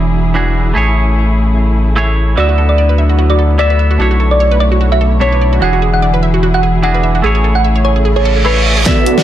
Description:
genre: future bass.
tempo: 148 BPM.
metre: 4/4.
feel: swing 55% on 16ths, half-time.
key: A major.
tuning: A4 = 440 Hz.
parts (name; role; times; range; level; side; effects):
semi-hollow electric guitar; accompaniment; 0.0-9.2 s; B2 to E5; -16 LUFS; right 4 dB; spring reverb, sidechain pumping, ping-pong delay.
muted studio string section; sustained chords; 0.0-9.2 s; C#3 to C#5; -22 LUFS; left 2 dB; sidechain pumping.
saturated sub bass; bass; 0.0-8.8 s; E1 to D2; -12 LUFS; left 1 dB; sidechain pumping.
thumb-piano-like synth pluck; melody; 2.4-9.2 s; B4 to F#5; -16 LUFS; right 1 dB; chorus, phaser, sidechain pumping, dub echo.
wide unison pluck; arpeggios; 2.4-8.8 s; F#4 to G#5; -20 LUFS; right 3 dB; sidechain pumping, ping-pong delay.
reverse cymbal and riser; sound effects; 8.2-9.2 s; none; -17 LUFS; right 3 dB; none.
supersaw chords; riff; 8.9-9.2 s; B3 to F#5; -12 LUFS; right 3 dB; sidechain pumping, low-pass filter.
big-room dance drum kit; drums; 8.9-9.2 s; hi-hat, snare drum; -14 LUFS; equal; none.
electronic kick drum; drums; 8.9-9.0 s; none; -14 LUFS; left 1 dB; none.
room: light reverb, digital ambience.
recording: none.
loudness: -9 LUFS.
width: side -12 dB against mid.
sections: 0.0-8.9 A section.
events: reverse cymbal 8.2-8.9; drum fill 8.9-9.2.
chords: 0.0 E9; 0.8 Amaj7; 2.4 D69; 4.0 Bm11; 5.6 E9; 7.2 Amaj7.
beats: 0.35 | 0.76 1.16 1.57 1.97 | 2.38 2.78 3.19 3.59 | 4.00 4.40 4.81 5.21 | 5.62 6.03 6.43 6.84 | 7.24 7.65 8.05 8.46 | 8.86.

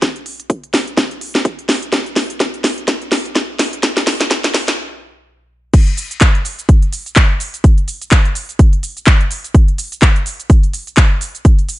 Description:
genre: house.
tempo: 126 BPM.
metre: 4/4.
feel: swing 57% on 16ths.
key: none.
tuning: none.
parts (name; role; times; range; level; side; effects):
electronic kick drum; drums; 0.0-11.6 s; none; -10 LUFS; equal; high-pass filter on kick.
house drum kit; drums; 0.0-11.8 s; crash cymbal, handclaps, hi-hat, shaker, snare drum; -17 LUFS; equal; none.
room: little or no reverb.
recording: high-pass filter, nothing above 10.5 kHz, faint mains hum.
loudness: -12 LUFS.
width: side -17 dB against mid.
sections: 0.0-5.7 A section; 5.7-11.8 B section.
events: build-up 0.0-5.7; drum fill 0.0-4.8; filter sweep 0.0-5.7; stop 4.8-5.7; drop 5.7-11.8.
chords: none.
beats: | 0.02 0.50 0.97 1.45 | 1.93 2.40 2.88 3.35 | 3.83 4.31 4.78 5.26 | 5.74 6.21 6.69 7.17 | 7.64 8.12 8.59 9.07 | 9.55 10.02 10.50 10.97 | 11.45.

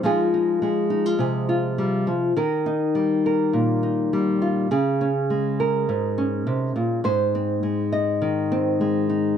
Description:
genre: folk.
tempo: 103 BPM.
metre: 4/4.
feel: straight.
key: unclear.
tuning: A4 = 436 Hz.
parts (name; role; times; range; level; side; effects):
nylon-string guitar; solo; 0.0-9.4 s; Ab2 to Eb5; -20 LUFS; equal; none.
room: small room reverb.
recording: dry, close 1970s-style studio recording.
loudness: -20 LUFS.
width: side -8 dB against mid.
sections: 0.0-2.4 A section; 2.4-9.4 B section.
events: none.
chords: 0.0 Fm7; 2.4 Eb; 4.7 Db5; 7.0 Ab.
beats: | 0.03 0.62 1.20 1.78 | 2.37 2.95 3.54 4.12 | 4.71 5.29 5.88 6.46 | 7.05 7.63 8.22 8.80.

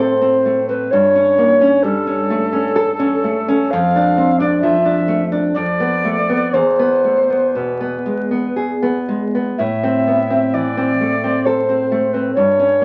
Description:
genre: romantic duo for recorder and classical guitar.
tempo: 58-67 BPM.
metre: 3/4.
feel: rubato.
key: A minor.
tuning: A4 = 442 Hz.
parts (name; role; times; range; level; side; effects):
mellow tenor recorder; melody; 0.0-12.8 s; A4 to F5; -18 LUFS; equal; none.
nylon-string guitar; accompaniment; 0.0-12.8 s; E2 to A4; -20 LUFS; equal; none.
room: wet small room reverb, RT60 0.5 s.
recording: very old 78 rpm record, vinyl crackle.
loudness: -16 LUFS.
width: mono.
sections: 0.0-12.8 A section.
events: none.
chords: 0.0 Am; 0.9 A7/G; 3.7 Dm/F; 5.5 Bm7b5/F; 6.5 E; 9.6 Am.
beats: | 0.92 1.83 2.75 | 3.71 4.62 5.54 | 6.53 7.55 8.57 | 9.58 10.53 11.45 | 12.36.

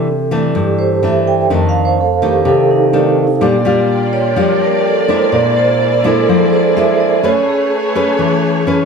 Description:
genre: bossa nova.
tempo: 126 BPM.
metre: 4/4.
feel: straight.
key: unclear.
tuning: A4 = 445 Hz.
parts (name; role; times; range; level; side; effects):
nylon-string guitar; accompaniment; 0.0-8.8 s; F2 to B4; -14 LUFS; left 2 dB; none.
vibraphone with medium mallets; accompaniment; 0.6-8.8 s; D#4 to A5; -14 LUFS; right 4 dB; none.
dark symphonic violin section; sustained chords; 3.4-8.8 s; A3 to D5; -20 LUFS; equal; none.
room: moderate large studio reverb, RT60 0.9 s.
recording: band playing live in one room.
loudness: -11 LUFS.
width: side -5 dB against mid.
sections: 0.0-8.8 A section.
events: vibraphone solo 0.0-8.8.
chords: 0.0 C69; 1.5 F6; 3.4 Bb6; 5.3 Bb7#11; 7.2 Amaj9.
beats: 0.07 0.55 1.03 | 1.51 1.99 2.46 2.94 | 3.42 3.90 4.37 4.85 | 5.33 5.80 6.28 6.76 | 7.24 7.71 8.19 8.67.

